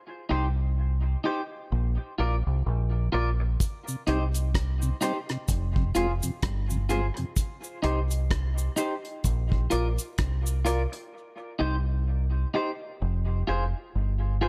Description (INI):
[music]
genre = dub reggae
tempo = 64 BPM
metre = 4/4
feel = swing 58% on 16ths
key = C minor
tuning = A4 = 440 Hz
[part]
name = clean electric guitar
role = accompaniment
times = 0.3-14.5 s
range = Eb4 to D5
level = -34 LUFS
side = equal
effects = subtle chorus, dub echo
[part]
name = deep dub fingered electric bass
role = bass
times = 0.3-14.5 s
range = F1 to C2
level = -28 LUFS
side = equal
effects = none
[part]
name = deep reggae drum kit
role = drums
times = 3.6-11.1 s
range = hi-hat, kick drum, rim click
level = -31 LUFS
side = equal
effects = none
[part]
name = cabasa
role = percussion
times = 3.6-10.9 s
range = none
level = -39 LUFS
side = equal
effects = none
[part]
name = mellow tonewheel organ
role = accompaniment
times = 3.9-7.3 s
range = F2 to F4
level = -36 LUFS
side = equal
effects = slow rotary speaker
[sound]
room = small room ambience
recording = none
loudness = -28 LUFS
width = mono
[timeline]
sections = 0.0-14.5 A section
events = break 0.0-3.6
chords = 0.0 Cm; 1.7 Bb; 3.6 Cm; 5.5 Fm; 7.4 Cm; 9.2 Bb; 11.1 Cm; 13.0 Fm